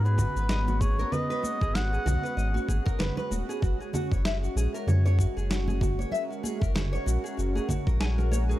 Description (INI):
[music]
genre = organic downtempo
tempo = 96 BPM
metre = 4/4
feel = swing 57% on 16ths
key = unclear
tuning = A4 = 440 Hz
[part]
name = trumpet with cup mute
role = melody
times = 0.0-3.0 s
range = B4 to F#5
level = -34 LUFS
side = equal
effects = tape echo
[part]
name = warm analog pad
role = sustained chords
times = 0.0-8.6 s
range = G#3 to A#4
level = -36 LUFS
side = equal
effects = chorus, tremolo, sidechain pumping
[part]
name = nylon-string guitar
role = arpeggios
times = 0.0-8.6 s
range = F#4 to G#5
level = -34 LUFS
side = right 1 dB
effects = tape echo
[part]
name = warm sub bass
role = bass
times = 0.0-8.5 s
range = D#1 to G#2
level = -26 LUFS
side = equal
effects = none
[part]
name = electronic shaker, congas and snare drum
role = drums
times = 0.1-8.6 s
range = none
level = -33 LUFS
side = right 1 dB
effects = overdrive, studio reverb
[part]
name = bongos and congas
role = percussion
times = 0.1-8.5 s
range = none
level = -38 LUFS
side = right 1 dB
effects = none
[part]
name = electronic kick drum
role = drums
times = 0.2-8.0 s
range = none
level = -28 LUFS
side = equal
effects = overdrive, studio reverb
[sound]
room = small room ambience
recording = none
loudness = -25 LUFS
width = side -15 dB against mid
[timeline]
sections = 0.0-8.6 A section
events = none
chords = 0.0 G#m7; 3.6 F#add9